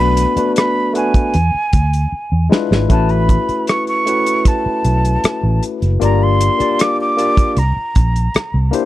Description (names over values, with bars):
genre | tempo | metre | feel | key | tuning
lush 1970s-style soul | 77 BPM | 4/4 | straight | unclear | A4 = 440 Hz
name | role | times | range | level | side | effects
breathy mellow jazz flute | melody | 0.0-8.7 s | G#5 to D6 | -19 LUFS | right 1 dB | none
barky tine electric piano | accompaniment | 0.0-8.9 s | G#3 to D5 | -18 LUFS | moving between left 8 dB and right 2 dB | overdrive, auto-pan
vintage muted fingered electric bass | bass | 0.0-8.7 s | F#1 to E2 | -15 LUFS | right 1 dB | none
warm soul drum kit | drums | 0.2-8.9 s | hi-hat, kick drum, rim click, snare drum | -15 LUFS | equal | none
room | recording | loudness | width
small room ambience | dry, close 1970s-style studio recording | -13 LUFS | side -15 dB against mid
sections
0.0-8.9 A section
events
drum fill 2.1-2.9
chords
0.0 Bm7; 1.3 E7b9; 2.9 A69; 6.0 Gm7; 7.6 C7(no3)